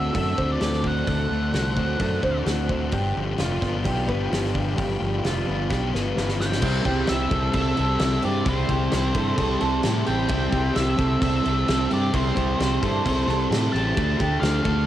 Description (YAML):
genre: rock, shoegaze and dream pop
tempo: 130 BPM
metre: 4/4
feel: straight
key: unclear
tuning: A4 = 440 Hz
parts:
  - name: octave-fuzz lead guitar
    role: melody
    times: 0.0-2.4, 6.4-14.8 s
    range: C5 to A5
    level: -30 LUFS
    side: equal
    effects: distortion, cassette tape, tape echo
  - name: deep dark ambient pad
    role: sustained chords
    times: 0.0-14.9 s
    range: G4 to D6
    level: -36 LUFS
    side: right 1 dB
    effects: chorus, built-in reverb, cassette tape
  - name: fingerpicked twelve-string acoustic guitar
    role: arpeggios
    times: 0.0-14.9 s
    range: F4 to C5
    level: -30 LUFS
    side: right 2 dB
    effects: lush chorus, cassette tape, tape echo
  - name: electric guitar through a small old amp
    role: riff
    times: 0.0-14.9 s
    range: G2 to F#4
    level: -30 LUFS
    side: right 7 dB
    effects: reverse reverb, cassette tape
  - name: thick fuzz guitar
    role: riff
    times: 0.0-14.9 s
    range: G2 to F#4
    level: -28 LUFS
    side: left 6 dB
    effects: distortion, wide subtle chorus, cassette tape
  - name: fuzz fingered electric bass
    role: bass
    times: 0.0-14.8 s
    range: F1 to A2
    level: -26 LUFS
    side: equal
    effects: overdrive
  - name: loose indie drum kit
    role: drums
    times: 0.1-14.8 s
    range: crash cymbal, hi-hat, kick drum, snare drum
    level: -28 LUFS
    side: equal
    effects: cassette tape
  - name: crunchy overdriven guitar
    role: riff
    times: 6.6-14.9 s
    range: C3 to D4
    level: -31 LUFS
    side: equal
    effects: none
room: small room ambience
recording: home recording on cassette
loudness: -20 LUFS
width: side -12 dB against mid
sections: 0.0-6.6 A section; 6.6-14.9 B section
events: drum fill 5.7-6.6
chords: 0.0 D7; 2.9 G7; 6.6 C; 14.0 Dm